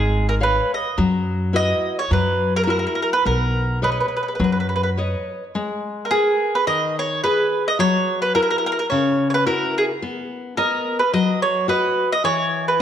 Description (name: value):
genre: italian folk, Italian serenade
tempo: 106 BPM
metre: 4/4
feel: swing 54% on 8ths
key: B major, G# minor from 5.5 s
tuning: A4 = 440 Hz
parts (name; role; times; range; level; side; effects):
- mandolin; melody; 0.0-12.8 s; G#4 to D#5; -20 LUFS; right 2 dB; none
- nylon-string guitar; accompaniment; 0.0-12.8 s; C#3 to E#5; -23 LUFS; left 3 dB; none
- upright bass; bass; 0.0-5.1 s; G#1 to F#2; -22 LUFS; equal; none
room: wet recital hall reverb, RT60 1.7 s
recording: none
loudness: -18 LUFS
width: side -9 dB against mid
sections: 0.0-5.5 A section; 5.5-12.8 B section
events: none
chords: 0.0 C#7; 1.0 F#7sus4; 2.1 F#7; 3.2 Badd9; 5.5 G#madd9; 7.8 F#7; 10.0 Bmaj7; 12.2 E5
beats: 0.41 | 0.98 1.54 2.11 2.68 | 3.25 3.82 4.39 4.96 | 5.53 6.10 6.66 7.23 | 7.79 8.35 8.90 9.46 | 10.02 10.57 11.12 11.68 | 12.24 12.80